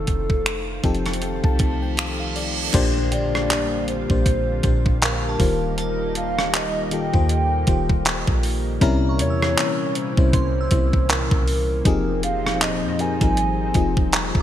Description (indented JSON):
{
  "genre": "contemporary R&B",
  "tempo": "79 BPM",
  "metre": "4/4",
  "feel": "swing 58% on 16ths",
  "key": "unclear",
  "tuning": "A4 = 440 Hz",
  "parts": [
    { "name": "hollow clarinet-like synth lead", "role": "melody", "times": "0.0-14.4 s", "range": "A4 to Ab5", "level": "-27 LUFS", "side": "right 1 dB", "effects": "chorus, digital delay" },
    { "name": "lush unison pad", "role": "sustained chords", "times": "0.0-14.4 s", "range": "Bb2 to F4", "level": "-31 LUFS", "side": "right 2 dB", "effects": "chorus, sidechain pumping" },
    { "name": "soft 808-style bass", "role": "bass", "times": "0.0-14.4 s", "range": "Eb1 to F2", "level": "-25 LUFS", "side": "equal", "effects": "none" },
    { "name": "crisp 8-bit digital drum machine", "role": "drums", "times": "0.1-14.4 s", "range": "crash cymbal, finger snaps, handclaps, hi-hat, kick drum, rim click", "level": "-22 LUFS", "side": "equal", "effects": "gated reverb" },
    { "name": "FM electric piano", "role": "accompaniment", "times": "0.8-14.4 s", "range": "Bb2 to A5", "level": "-24 LUFS", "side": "left 5 dB", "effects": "chorus" },
    { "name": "reverse cymbal and impact", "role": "sound effects", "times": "1.6-5.8 s", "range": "none", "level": "-31 LUFS", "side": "right 5 dB", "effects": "none" },
    { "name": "glassy synth bell", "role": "texture", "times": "3.1-14.4 s", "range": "F5 to E6", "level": "-35 LUFS", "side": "right 4 dB", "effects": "chorus, tremolo, digital delay" }
  ],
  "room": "light reverb",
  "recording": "bright 1980s-style digital production",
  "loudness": "-18 LUFS",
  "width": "side -11 dB against mid",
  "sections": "0.0-2.7 A section; 2.7-14.4 B section",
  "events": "FM electric piano fill 0.5-2.7; reverse cymbal 1.6-2.7; impact 2.7-5.8",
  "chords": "0.0 F7; 2.7 Bb6; 5.4 Eb6; 8.8 C7b9; 11.9 Fm7",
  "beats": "0.46 1.22 1.98 | 2.74 3.50 4.26 5.01 | 5.78 6.53 7.29 8.05 | 8.81 9.57 10.33 11.09 | 11.85 12.61 13.37 14.13"
}